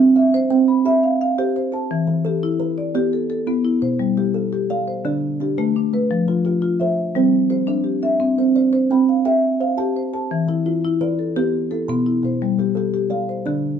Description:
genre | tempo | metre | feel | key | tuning
southern african traditional, mbira-style interlocking cycle | 114 BPM (dotted quarters) | 12/8 | straight | unclear | A4 = 440 Hz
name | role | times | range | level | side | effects
kalimba | arpeggios | 0.0-13.8 s | B2 to C6 | -20 LUFS | right 7 dB | none
marimba with medium mallets | arpeggios | 0.0-13.8 s | D3 to B5 | -19 LUFS | left 5 dB | none
room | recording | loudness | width
light reverb | band playing live in one room | -17 LUFS | side -8 dB against mid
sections
0.0-4.0 A section; 4.0-13.8 A section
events
none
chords
0.0 C; 1.9 Em; 4.0 G; 5.1 Dm; 6.1 F; 7.2 G5; 8.2 C; 10.3 Em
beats
0.33 0.85 1.38 | 1.90 2.43 2.95 3.48 | 4.00 4.53 5.05 5.58 | 6.10 6.63 7.15 7.68 | 8.20 8.73 9.25 9.78 | 10.30 10.83 11.36 11.88 | 12.41 12.93 13.46

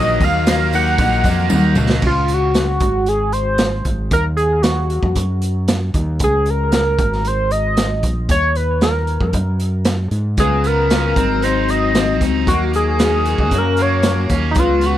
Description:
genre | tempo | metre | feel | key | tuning
indie rock | 115 BPM | 4/4 | straight | unclear | A4 = 442 Hz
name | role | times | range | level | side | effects
lead with added fifth | melody | 0.0-15.0 s | D#4 to F#5 | -18 LUFS | equal | chorus, tape echo
glassy synth bell | second line | 0.0-1.7 s | D#6 to F#6 | -30 LUFS | right 6 dB | none
raw garage guitar | riff | 0.0-2.0, 10.4-15.0 s | F#2 to E#4 | -22 LUFS | left 10 dB | overdrive, phaser
scooped high-gain guitar | riff | 0.0-2.0, 10.4-15.0 s | F#3 to F#4 | -24 LUFS | right 8 dB | distortion, lush chorus
growling fingered electric bass | bass | 0.0-15.0 s | G#1 to G#2 | -19 LUFS | equal | overdrive
tambourine | percussion | 0.1-2.0 s | none | -36 LUFS | left 17 dB | none
raw garage drum kit | drums | 0.2-14.9 s | crash cymbal, hi-hat, kick drum, snare drum, toms | -19 LUFS | right 1 dB | none
room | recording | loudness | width
little or no reverb | none | -14 LUFS | side -12 dB against mid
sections
0.0-2.0 A section; 2.0-15.0 B section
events
drum fill 1.5-2.0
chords
0.0 D#madd9; 2.0 C#sus4; 2.8 G#; 4.1 D#m; 6.2 A#m7/C#; 7.0 G#5; 8.3 D#5; 9.3 F#sus2; 10.4 C#7sus4; 11.2 G#7; 12.5 D#m7; 13.5 F#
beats
0.47 0.99 1.51 | 2.04 2.56 3.08 3.60 | 4.12 4.64 5.17 5.69 | 6.21 6.73 7.25 7.78 | 8.30 8.82 9.34 9.87 | 10.39 10.91 11.44 11.96 | 12.48 13.00 13.53 14.05 | 14.57

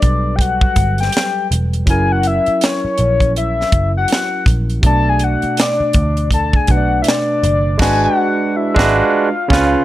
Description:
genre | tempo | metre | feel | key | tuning
R&B, neo-soul | 81 BPM | 4/4 | swing 61% on 16ths | F# minor | A4 = 442 Hz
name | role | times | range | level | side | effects
soft octave-layered synth lead | melody | 0.0-9.8 s | C#5 to A5 | -18 LUFS | left 4 dB | chorus, slapback echo
barky tine electric piano | accompaniment | 0.0-9.8 s | B2 to D5 | -19 LUFS | right 3 dB | overdrive
vintage muted picked electric bass | bass | 0.0-9.7 s | E1 to D2 | -17 LUFS | equal | none
tight funk drum kit | drums | 0.0-9.7 s | crash cymbal, hi-hat, kick drum, snare drum | -16 LUFS | equal | none
room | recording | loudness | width
little or no reverb | none | -13 LUFS | side -14 dB against mid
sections
0.0-9.8 A section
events
band accent 7.8-9.8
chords
0.0 Gmaj9; 1.9 F#7; 4.8 Bm7; 7.8 G#m7b5; 9.3 C#7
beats
0.39 1.13 | 1.87 2.61 3.35 4.09 | 4.83 5.57 6.32 7.05 | 7.80 8.54 9.28

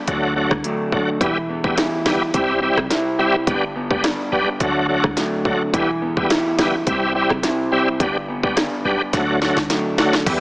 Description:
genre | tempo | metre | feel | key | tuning
dancehall | 106 BPM | 4/4 | straight | unclear | A4 = 440 Hz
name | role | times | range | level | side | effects
electric guitar at the edge of break-up | arpeggios | 0.0-10.4 s | G2 to E4 | -22 LUFS | equal | digital delay
bright tonewheel organ | accompaniment | 0.1-10.4 s | F#3 to G4 | -20 LUFS | equal | overdrive, chorus vibrato, fast rotary speaker, sidechain pumping
warm 808-style bass | bass | 0.1-10.4 s | E1 to E2 | -30 LUFS | equal | none
island pop drum kit | drums | 0.1-10.4 s | crash cymbal, hi-hat, kick drum, rim click, snare drum | -21 LUFS | equal | overdrive
room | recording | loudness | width
light reverb | small speaker sound | -17 LUFS | side -23 dB against mid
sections
0.0-10.3 A section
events
drum fill 9.1-10.3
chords
0.1 D; 1.2 Em; 2.3 C; 3.5 G; 4.6 D; 5.7 Em; 6.9 C; 8.0 G; 9.1 D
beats
0.08 0.64 | 1.21 1.77 2.34 2.91 | 3.47 4.04 4.61 5.17 | 5.74 6.30 6.87 7.43 | 8.00 8.57 9.13 9.70 | 10.27

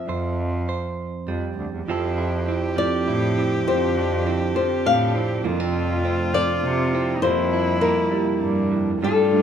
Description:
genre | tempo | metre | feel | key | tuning
acoustic folk-pop ballad | 101 BPM | 3/4 | straight | unclear | A4 = 440 Hz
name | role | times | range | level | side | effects
flamenco guitar | melody | 0.0-9.4 s | A4 to F5 | -23 LUFS | left 6 dB | none
direct-recorded clean electric guitar | accompaniment | 0.0-9.4 s | F2 to C5 | -27 LUFS | right 5 dB | none
rich cello | bass | 0.1-9.4 s | D2 to C3 | -25 LUFS | equal | none
clear viola | second line | 1.9-9.4 s | Eb4 to G4 | -27 LUFS | right 1 dB | none
warm studio string section | sustained chords | 1.9-9.4 s | C3 to G4 | -33 LUFS | equal | none
felt-muted upright piano | arpeggios | 1.9-9.4 s | F3 to A4 | -28 LUFS | right 5 dB | none
room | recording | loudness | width
moderate large studio reverb, RT60 1.4 s | minimal, uncompressed stereo recording | -20 LUFS | side -8 dB against mid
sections
0.0-1.9 A section; 1.9-9.0 B section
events
none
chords
0.1 C/F; 1.9 Dm9/F; 5.5 Fmaj7; 7.2 C7/F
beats
| 0.08 0.68 1.28 | 1.88 2.48 3.08 | 3.67 4.27 4.86 | 5.45 6.04 6.63 | 7.22 7.81 8.41 | 9.02

